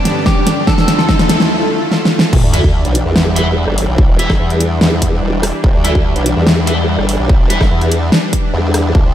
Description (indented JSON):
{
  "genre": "heavy wobble dubstep",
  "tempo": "145 BPM",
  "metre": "4/4",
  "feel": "half-time",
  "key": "E phrygian",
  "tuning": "A4 = 440 Hz",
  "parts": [
    { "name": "electric guitar at the edge of break-up", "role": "melody", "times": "0.0-1.2 s", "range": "D4 to A4", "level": "-21 LUFS", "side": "left 1 dB", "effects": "analog chorus, diffuse ambient delay" },
    { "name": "supersaw pad", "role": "sustained chords", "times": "0.0-9.1 s", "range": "D2 to D5", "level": "-19 LUFS", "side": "equal", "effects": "analog chorus, sidechain pumping" },
    { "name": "riser and sub drop", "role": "sound effects", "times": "0.0-4.0 s", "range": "none", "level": "-20 LUFS", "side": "equal", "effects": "none" },
    { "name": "warm chamber string section", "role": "texture", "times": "0.0-1.5 s", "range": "D3 to B4", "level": "-27 LUFS", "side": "right 1 dB", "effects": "none" },
    { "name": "big-room dance drum kit", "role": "drums", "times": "0.1-8.8 s", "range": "crash cymbal, hi-hat, rim click, snare drum", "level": "-15 LUFS", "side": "equal", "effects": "none" },
    { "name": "electronic kick drum", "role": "drums", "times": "0.3-9.0 s", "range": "none", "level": "-13 LUFS", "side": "equal", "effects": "none" },
    { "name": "formant-sweep wobble bass", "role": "bass", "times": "2.3-9.1 s", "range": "E1 to E2", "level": "-15 LUFS", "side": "equal", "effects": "chorus, overdrive" },
    { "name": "distorted electric guitar", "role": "stabs", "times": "2.5-7.6 s", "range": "E4 to E5", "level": "-23 LUFS", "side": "equal", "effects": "overdrive, diffuse ambient delay" }
  ],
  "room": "moderate lush hall reverb, RT60 1.9 s",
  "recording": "dreamy mix soaked in reverb",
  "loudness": "-10 LUFS",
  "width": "side -11 dB against mid",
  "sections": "0.0-2.3 A section; 2.3-9.1 B section",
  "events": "build-up 0.0-2.3; drum fill 0.0-1.5, 1.9-2.3; riser 0.0-1.5; break 1.5-2.3; drop 2.3-9.1; impact 2.3-4.0",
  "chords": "0.0 G; 0.7 Dm; 2.3 Em7",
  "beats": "0.26 | 0.67 1.09 1.50 1.92 | 2.33 2.74 3.16 3.57 | 3.98 4.40 4.81 5.22 | 5.64 6.05 6.47 6.88 | 7.29 7.71 8.12 8.54 | 8.95"
}